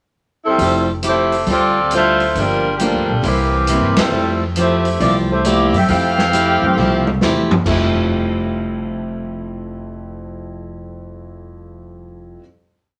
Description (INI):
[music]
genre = jazz, big band swing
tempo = 136 BPM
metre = 4/4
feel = swing 66% on 8ths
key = F major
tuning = A4 = 439 Hz
[part]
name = warm saxophone section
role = melody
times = 0.4-7.2 s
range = E3 to F5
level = -18 LUFS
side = equal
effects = none
[part]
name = picked plugged-in swing-style acoustic guitar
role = accompaniment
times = 0.6-12.5 s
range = G2 to G4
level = -24 LUFS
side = equal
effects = none
[part]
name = warm concert grand piano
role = accompaniment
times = 0.6-12.4 s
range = F2 to E4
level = -28 LUFS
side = equal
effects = none
[part]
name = upright bass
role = bass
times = 0.6-12.4 s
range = F1 to G2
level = -25 LUFS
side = equal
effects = none
[part]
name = swinging big-band drum kit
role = drums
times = 0.6-7.8 s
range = crash cymbal, hi-hat, kick drum, ride cymbal, snare drum, toms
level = -25 LUFS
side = equal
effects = none
[sound]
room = wet studio reverb, RT60 0.6 s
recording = none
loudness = -16 LUFS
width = mono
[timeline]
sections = 0.0-0.6 pickup bar; 0.6-7.7 A section; 7.7-11.2 final chord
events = band accent 3.9; drum fill 6.8-7.7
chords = 0.0 Gsus24; 0.6 Fmaj9; 1.5 Dm11; 2.4 Gm7; 3.2 C7; 4.1 Fmaj9